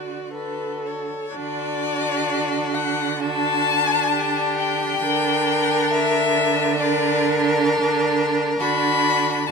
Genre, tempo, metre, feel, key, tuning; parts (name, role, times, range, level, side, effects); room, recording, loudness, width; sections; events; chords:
classical, slow romantic movement for string quartet; 66 BPM; 4/4; rubato; D major; A4 = 441 Hz
rich violin; melody; 0.0-9.5 s; B4 to B5; -23 LUFS; left 7 dB
rich violin; second line; 0.0-9.5 s; F#4 to Bb4; -25 LUFS; left 2 dB
rich viola; accompaniment; 0.0-9.5 s; D4 to A4; -25 LUFS; right 1 dB
rich cello; bass; 0.0-9.5 s; D3; -25 LUFS; right 8 dB
light reverb; close, detailed microphones; -18 LUFS; side -5 dB against mid
0.0-1.3 A section; 1.3-9.5 A section
0.0 D